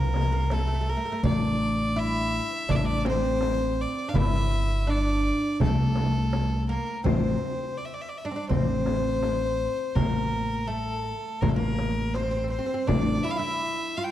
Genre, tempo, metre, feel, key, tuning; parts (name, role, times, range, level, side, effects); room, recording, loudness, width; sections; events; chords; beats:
Arabic maqam ensemble; 82 BPM; 4/4; straight; A maqam kurd; A4 = 441 Hz
clear violin; melody; 0.0-14.1 s; A4 to G5; -30 LUFS; left 2 dB
oud; second line; 0.0-14.1 s; A3 to F4; -32 LUFS; right 2 dB
upright bass; bass; 0.0-13.2 s; G1 to C2; -27 LUFS; equal
darbuka; percussion; 0.1-13.1 s; -31 LUFS; right 2 dB
frame drum; percussion; 0.2-13.1 s; -32 LUFS; left 4 dB
moderate scoring stage reverb, RT60 2.0 s; dark, warm production; -24 LUFS; side -12 dB against mid
0.0-7.1 A section; 7.1-14.1 B section
0.52 | 1.24 1.97 2.70 3.42 | 4.15 4.88 5.61 6.33 | 7.06 7.79 8.51 9.24 | 9.97 10.70 11.43 12.15 | 12.88 13.61